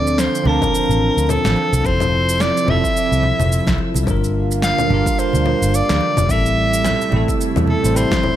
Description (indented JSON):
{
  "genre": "sunset chillout",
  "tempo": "108 BPM",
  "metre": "4/4",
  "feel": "swing 58% on 16ths",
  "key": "D minor",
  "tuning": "A4 = 440 Hz",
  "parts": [
    { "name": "breathy soprano saxophone", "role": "melody", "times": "0.0-8.4 s", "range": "A4 to F5", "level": "-20 LUFS", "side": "equal", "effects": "digital delay" },
    { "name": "bell-like tine electric piano", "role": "accompaniment", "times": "0.0-8.4 s", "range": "F3 to A5", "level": "-22 LUFS", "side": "moving between left 4 dB and right 4 dB", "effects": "auto-pan, ping-pong delay" },
    { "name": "lush unison pad", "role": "sustained chords", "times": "0.0-8.4 s", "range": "C3 to F4", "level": "-25 LUFS", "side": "right 1 dB", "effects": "chorus, phaser" },
    { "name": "vintage muted fingered electric bass", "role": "bass", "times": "0.0-8.0 s", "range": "F1 to E2", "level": "-19 LUFS", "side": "equal", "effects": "none" },
    { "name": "electronic shaker, snare drum and congas", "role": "drums", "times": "0.1-8.4 s", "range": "none", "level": "-24 LUFS", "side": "left 2 dB", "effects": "overdrive" },
    { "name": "congas", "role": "percussion", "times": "0.5-8.4 s", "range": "none", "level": "-26 LUFS", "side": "right 3 dB", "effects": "none" },
    { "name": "electronic kick drum", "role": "drums", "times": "0.6-8.2 s", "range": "none", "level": "-23 LUFS", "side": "equal", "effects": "overdrive" }
  ],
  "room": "moderate recital hall reverb, RT60 1.5 s, digital ambience",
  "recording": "none",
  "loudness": "-14 LUFS",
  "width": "side -12 dB against mid",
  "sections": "0.0-8.4 A section",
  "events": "none",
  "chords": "0.0 Dm7; 1.8 Fmaj7; 4.1 Gm7; 6.3 Am7"
}